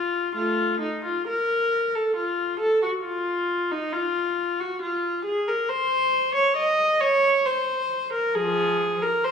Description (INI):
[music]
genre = classical, baroque-style suite movement for unaccompanied viola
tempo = 68 BPM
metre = 3/4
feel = rubato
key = unclear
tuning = A4 = 439 Hz
[part]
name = warm viola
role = solo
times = 0.0-9.3 s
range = F3 to Eb5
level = -21 LUFS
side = equal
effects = none
[sound]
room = moderate recital hall reverb, RT60 1.3 s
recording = studio reverb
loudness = -21 LUFS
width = side -6 dB against mid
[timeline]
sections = 0.0-9.3 A section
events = none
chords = none